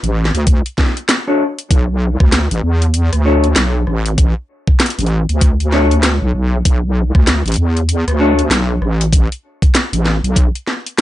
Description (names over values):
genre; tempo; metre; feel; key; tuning
glitch hop; 97 BPM; 4/4; swing 61% on 16ths; B minor; A4 = 438 Hz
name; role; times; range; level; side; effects
wobble bass; bass; 0.0-10.5 s; A1 to E2; -14 LUFS; equal; chorus, tube saturation
drum and bass drum kit; drums; 0.0-11.0 s; hi-hat, rim click, snare drum, toms; -17 LUFS; equal; none
electronic kick drum; drums; 0.5-10.5 s; none; -12 LUFS; equal; none
mellow electric guitar; stabs; 1.3-8.4 s; D4 to C#5; -16 LUFS; left 3 dB; vintage 12-bit sampler grit, sidechain pumping, low-pass filter, analog delay
room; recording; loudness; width
light reverb; dry, gritty hardware recording, nothing above 10.4 kHz; -12 LUFS; side -14 dB against mid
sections
0.0-11.0 A section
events
none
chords
0.0 Bm7